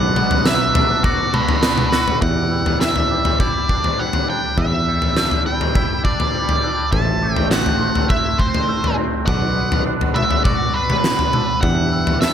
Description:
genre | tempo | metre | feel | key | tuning
post-rock | 102 BPM | 4/4 | straight | E minor | A4 = 443 Hz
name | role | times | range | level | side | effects
octave-fuzz lead guitar | melody | 0.0-12.3 s | B4 to A5 | -21 LUFS | equal | distortion, slapback echo
pedal steel guitar | sustained chords | 0.0-12.3 s | E3 to F#5 | -30 LUFS | right 3 dB | lush chorus
glockenspiel with rubber mallets | arpeggios | 0.0-12.3 s | C6 to G6 | -30 LUFS | right 5 dB | slapback echo
twangy electric guitar | arpeggios | 0.0-12.3 s | E2 to F#4 | -27 LUFS | left 1 dB | ensemble chorus, slapback echo
picked electric bass | bass | 0.0-12.3 s | A1 to E2 | -25 LUFS | equal | none
huge arena drum kit | drums | 0.2-12.3 s | kick drum, snare drum, toms | -18 LUFS | equal | none
room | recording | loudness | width
light reverb, studio reverb | none | -15 LUFS | side -9 dB against mid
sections
0.0-2.2 A section; 2.2-12.3 B section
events
drum fill 1.9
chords
0.0 Bm; 2.2 Em7; 6.9 Am; 9.3 Bm; 11.6 Em7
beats
0.46 1.05 1.64 | 2.22 2.81 3.40 3.99 | 4.58 5.16 5.75 6.34 | 6.93 7.52 8.10 8.69 | 9.28 9.87 10.46 11.05 | 11.63 12.22

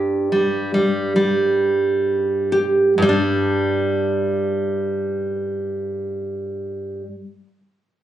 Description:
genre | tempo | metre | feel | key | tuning
folk, solo fingerstyle acoustic guitar | 64-75 BPM | 4/4 | straight | unclear | A4 = 440 Hz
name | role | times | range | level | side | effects
nylon-string guitar | solo | 0.0-7.1 s | G2 to G4 | -18 LUFS | right 1 dB | none
room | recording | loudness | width
light reverb | recorded on a phone in the room, club reverb | -18 LUFS | side -11 dB against mid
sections
0.0-3.0 A section; 3.0-6.7 B section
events
slowing down 0.0-3.0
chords
none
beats
0.32 1.15 2.04 | 2.98 3.91 4.83 5.75

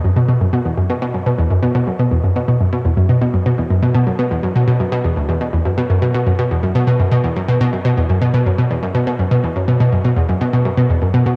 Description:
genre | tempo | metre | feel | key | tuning
ambient | 123 BPM | 4/4 | straight | unclear | A4 = 439 Hz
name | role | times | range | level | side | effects
analog pluck | solo | 0.0-11.4 s | D2 to B2 | -16 LUFS | equal | chorus, cassette tape, analog delay
room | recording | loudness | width
moderate spring reverb, RT60 2.8 s | home recording on cassette | -16 LUFS | mono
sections
0.0-11.4 A section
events
none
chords
none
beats
| 0.04 0.53 1.02 1.51 | 1.99 2.48 2.97 3.46 | 3.94 4.43 4.92 5.41 | 5.90 6.38 6.87 7.36 | 7.85 8.34 8.82 9.31 | 9.80 10.29 10.77 11.26

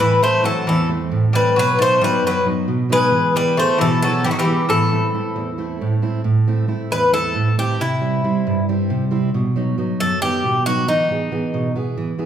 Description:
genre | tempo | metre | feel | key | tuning
greek folk | 271 BPM (eighths) | 7/8 | straight | A dorian sharp4 | A4 = 440 Hz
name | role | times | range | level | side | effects
Greek bouzouki | melody | 0.0-11.7 s | D#4 to C5 | -18 LUFS | left 2 dB | none
Greek bouzouki | second line | 0.0-5.8 s | D#3 to A3 | -21 LUFS | left 2 dB | none
fingerpicked steel-string acoustic guitar | accompaniment | 0.0-12.3 s | E2 to G#4 | -19 LUFS | right 2 dB | none
room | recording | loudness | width
wet large studio reverb, RT60 1.3 s | band playing live in one room | -16 LUFS | side -9 dB against mid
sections
0.0-6.2 A section; 6.2-12.3 B section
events
none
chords
0.0 Am; 1.6 B; 3.1 E; 4.7 Am; 7.8 C; 9.3 B; 10.9 E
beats
| 0.00 0.22 0.45 0.67 0.90 1.12 1.34 | 1.57 1.79 2.02 2.24 2.46 2.69 2.91 | 3.13 3.36 3.58 3.80 4.03 4.25 4.47 | 4.69 4.92 5.14 5.36 5.58 5.80 6.02 | 6.25 6.47 6.69 6.91 7.13 7.35 7.57 | 7.79 8.01 8.23 8.46 8.68 8.90 9.12 | 9.34 9.56 9.78 9.99 10.21 10.44 10.65 | 10.87 11.09 11.31 11.53 11.75 11.97 12.19

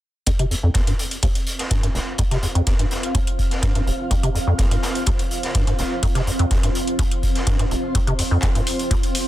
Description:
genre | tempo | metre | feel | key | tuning
acid house | 125 BPM | 4/4 | straight | unclear | A4 = 441 Hz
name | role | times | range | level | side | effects
acid bass, square | riff | 0.3-8.9 s | F1 to C3 | -23 LUFS | equal | wide subtle chorus, ping-pong delay
electro analog drum machine | drums | 0.3-9.2 s | handclaps, hi-hat | -26 LUFS | equal | none
electronic kick drum | drums | 0.3-9.0 s | none | -21 LUFS | equal | none
raw garage drum kit | drums | 0.3-9.3 s | hi-hat, snare drum | -30 LUFS | equal | high-pass filter on hats, high-pass filter on snare, high-pass filter on room
granular cloud pad | texture | 1.1-9.3 s | C4 to G5 | -27 LUFS | right 1 dB | built-in reverb, sidechain pumping
room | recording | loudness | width
light reverb | dense, heavily limited modern master | -18 LUFS | side -14 dB against mid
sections
0.3-9.3 A section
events
filter sweep on acid bass 0.3-9.3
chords
0.3 F5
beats
| 0.27 0.75 1.23 1.71 | 2.19 2.67 3.15 3.63 | 4.11 4.59 5.07 5.55 | 6.03 6.51 6.99 7.47 | 7.95 8.43 8.91

